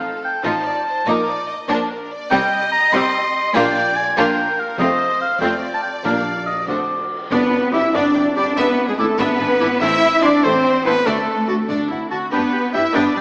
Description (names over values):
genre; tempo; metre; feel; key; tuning
cinematic, heroic adventure film score; 96 BPM (dotted quarters); 6/8; straight; G major from 7.3 s; A4 = 440 Hz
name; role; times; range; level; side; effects
warm symphonic violin section; melody; 0.0-13.2 s; A4 to B5; -27 LUFS; equal; none
warm oboe; second line; 0.0-13.2 s; D5 to D6; -20 LUFS; equal; none
warm symphonic violin section; second line; 0.4-13.2 s; G3 to E5; -24 LUFS; equal; none
clear symphonic viola section; accompaniment; 0.4-13.2 s; F3 to G4; -23 LUFS; equal; none
warm studio double bass section; bass; 0.4-13.2 s; F1 to G2; -32 LUFS; equal; none
warm symphonic cello section; bass; 0.4-13.2 s; F2 to E4; -23 LUFS; equal; none
timpani; percussion; 3.5-6.6 s; Bb2; -31 LUFS; equal; none
cymbal swell and tam-tam; percussion; 4.8-8.9 s; none; -29 LUFS; equal; none
mellow large flute ensemble; second line; 7.3-13.2 s; G#4 to E5; -27 LUFS; equal; none
dark French horn section; sustained chords; 7.3-13.2 s; G#3 to E4; -23 LUFS; equal; none
mellow trumpet; stabs; 7.3-13.2 s; G#4 to E5; -20 LUFS; equal; none
bright clarinet; second line; 7.7-13.2 s; E4 to G4; -29 LUFS; equal; none
room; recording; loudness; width
wet scoring stage reverb, RT60 1.9 s; small speaker sound; -15 LUFS; side -33 dB against mid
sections
0.0-7.3 A section; 7.3-13.2 B section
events
band accent 7.3-7.7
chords
0.0 F7/A; 1.1 Eb5/Bb; 1.7 Bb; 2.3 Cm; 3.6 Bb6; 4.8 F7; 6.0 Bb; 6.7 D7; 7.3 G; 8.6 E7/G#; 9.8 Am; 11.1 D; 12.3 G